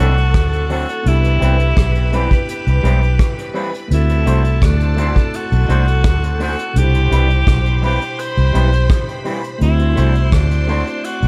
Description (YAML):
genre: lovers rock reggae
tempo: 84 BPM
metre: 4/4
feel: straight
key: unclear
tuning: A4 = 441 Hz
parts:
  - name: bright tenor saxophone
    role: melody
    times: 0.0-11.3 s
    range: D4 to C5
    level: -25 LUFS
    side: equal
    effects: dub echo
  - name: string machine, violins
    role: second line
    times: 0.0-11.3 s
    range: A4 to D6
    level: -31 LUFS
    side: equal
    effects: ensemble chorus, dub echo
  - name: tine electric piano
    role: accompaniment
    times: 0.0-11.3 s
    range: B2 to G4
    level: -29 LUFS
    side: equal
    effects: dub echo
  - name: electric guitar through a small old amp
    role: stabs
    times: 0.0-10.9 s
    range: F#3 to C5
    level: -27 LUFS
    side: equal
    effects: lush chorus, dub echo
  - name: vintage muted fingered electric bass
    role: bass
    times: 0.0-11.3 s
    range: B1 to D2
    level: -17 LUFS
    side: equal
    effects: none
  - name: soft brush drum kit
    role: drums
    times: 0.2-11.3 s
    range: hi-hat, kick drum, rim click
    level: -19 LUFS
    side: equal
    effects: none
room: small room ambience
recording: none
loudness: -16 LUFS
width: mono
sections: 0.0-11.3 A section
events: none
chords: 0.0 D7; 1.1 Cmaj7; 3.9 D7; 6.8 Cmaj7; 9.6 D7